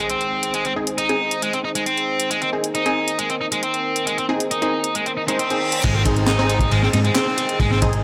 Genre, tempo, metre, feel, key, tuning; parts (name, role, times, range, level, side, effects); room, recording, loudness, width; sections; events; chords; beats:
breakbeat, breaks; 136 BPM; 4/4; straight; A4 = 440 Hz
dark analog pad; sustained chords; 0.0-8.0 s; Eb4 to C5; -30 LUFS; equal; chorus, sidechain pumping
distorted electric guitar; riff; 0.0-7.8 s; Ab3 to Eb4; -24 LUFS; equal; overdrive, low-pass filter, delay
impact, reverse cymbal and downlifter; sound effects; 0.0-0.5, 5.2-8.0 s; -34 LUFS; equal
garage drum kit; drums; 0.1-8.0 s; handclaps, hi-hat; -29 LUFS; equal; overdrive
orchestra-hit-like synth stab; stabs; 0.8-8.0 s; C4 to C5; -28 LUFS; equal; built-in reverb, delay
hollow-body short-scale picked electric bass; bass; 5.8-8.0 s; Ab1 to Ab2; -22 LUFS; equal
crunchy breakbeat drum kit; drums; 5.8-7.9 s; crash cymbal, kick drum, ride cymbal, snare drum; -25 LUFS; equal
light reverb, small room ambience; -20 LUFS; mono
0.0-5.8 A section; 5.8-8.0 B section
impact 0.0-0.5; filter sweep on synth stab 0.0-5.8; reverse cymbal 5.2-5.8; drop 5.8-8.0
0.0 Ab
0.10 | 0.54 0.98 1.42 1.86 | 2.31 2.75 3.19 3.63 | 4.07 4.51 4.95 5.39 | 5.83 6.28 6.72 7.16 | 7.60